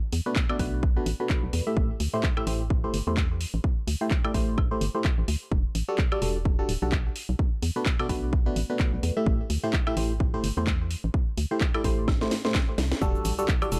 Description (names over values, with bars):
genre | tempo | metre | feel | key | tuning
piano house | 128 BPM | 4/4 | swing 57% on 16ths | A dorian | A4 = 440 Hz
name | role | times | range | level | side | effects
organ-like FM bass | bass | 0.1-13.8 s | D1 to E2 | -31 LUFS | equal | sidechain pumping
house drum kit | drums | 0.1-13.8 s | handclaps, hi-hat, shaker, snare drum, woodblock | -35 LUFS | equal | none
barking FM electric piano | riff | 0.3-13.8 s | A2 to E5 | -32 LUFS | equal | phaser, cassette tape, sidechain pumping, low-pass filter, delay
electronic kick drum | drums | 0.4-13.6 s | none | -28 LUFS | equal | none
impact | sound effects | 13.2-13.8 s | none | -43 LUFS | equal | none
warbly tape-like pad | texture | 13.7-13.8 s | E4 to F#5 | -46 LUFS | equal | none
room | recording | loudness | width
little or no reverb | none | -26 LUFS | mono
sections
0.0-13.0 A section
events
drum fill 12.1-13.0; band accent 12.9; impact 13.0-13.8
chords
0.0 Bm7; 1.8 Am7; 5.5 Em11; 7.2 Bm7; 9.3 Am7; 13.0 Em11